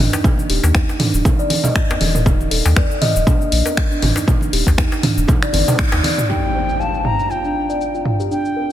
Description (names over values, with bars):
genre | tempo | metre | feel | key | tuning
afro house | 119 BPM | 4/4 | swing 55% on 16ths | G minor | A4 = 440 Hz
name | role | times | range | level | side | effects
warm sub bass | bass | 0.0-6.0 s | Eb1 to Eb2 | -17 LUFS | equal | sidechain pumping
kalimba | arpeggios | 0.1-8.7 s | Bb3 to G5 | -22 LUFS | equal | sidechain pumping, low-pass filter, ping-pong delay
house drum kit | drums | 0.1-8.5 s | finger snaps, hi-hat, shaker, toms | -21 LUFS | equal | low-pass filter on toms, small room ambience, low-pass filter on perc, soft clipping on snare, low-pass filter on snare, low-pass filter on hats
djembe | percussion | 0.1-6.2 s | none | -28 LUFS | left 2 dB | none
electronic kick drum | drums | 0.2-5.9 s | none | -16 LUFS | equal | small room ambience
congas | percussion | 0.2-6.2 s | none | -22 LUFS | right 2 dB | none
bright bansuri | melody | 6.3-8.7 s | G5 to Bb5 | -22 LUFS | left 1 dB | ping-pong delay
impact | sound effects | 6.3-8.3 s | none | -25 LUFS | equal | none
room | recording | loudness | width
light reverb, studio reverb | dense, heavily limited modern master | -14 LUFS | side -12 dB against mid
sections
0.0-6.3 A section; 6.3-8.7 B section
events
band accent 5.8; impact 6.3-8.3; filter sweep on drum 6.3-8.7; filter sweep on kalimba 6.3-8.7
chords
0.0 N.C.; 6.3 Gm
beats
| 0.24 0.75 1.25 1.76 | 2.26 2.77 3.27 3.77 | 4.28 4.78 5.29 5.79 | 6.29 6.80 7.30 7.81 | 8.31